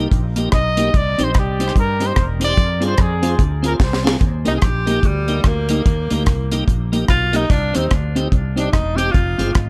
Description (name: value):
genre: ska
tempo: 146 BPM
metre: 4/4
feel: swing 60% on 8ths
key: Eb major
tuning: A4 = 440 Hz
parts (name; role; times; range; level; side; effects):
- mellow electric guitar; accompaniment; 0.0-9.5 s; Bb3 to Ab4; -27 LUFS; equal; dub echo
- tonewheel organ; stabs; 0.0-9.5 s; Bb3 to Ab4; -29 LUFS; equal; overdrive, slow rotary speaker, dub echo
- mellow fretless electric bass; bass; 0.0-9.7 s; Fb1 to G2; -23 LUFS; equal; analog chorus
- deep reggae drum kit; drums; 0.1-9.7 s; hi-hat, kick drum, rim click, snare drum; -20 LUFS; equal; none
- breathy trumpet; melody; 0.5-4.0 s; G4 to Eb5; -26 LUFS; equal; dub echo
- warm tenor saxophone; melody; 4.5-9.5 s; G3 to Ab4; -25 LUFS; equal; dub echo
room: light reverb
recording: none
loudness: -17 LUFS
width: mono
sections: 0.0-4.2 A section; 4.2-9.7 A section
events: trumpet solo 0.0-4.2; drum fill 3.8-4.2; tenor saxophone solo 4.2-9.7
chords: 0.0 Eb; 0.9 Cm; 2.6 Fm; 4.2 Eb; 7.5 Cm; 9.1 Fm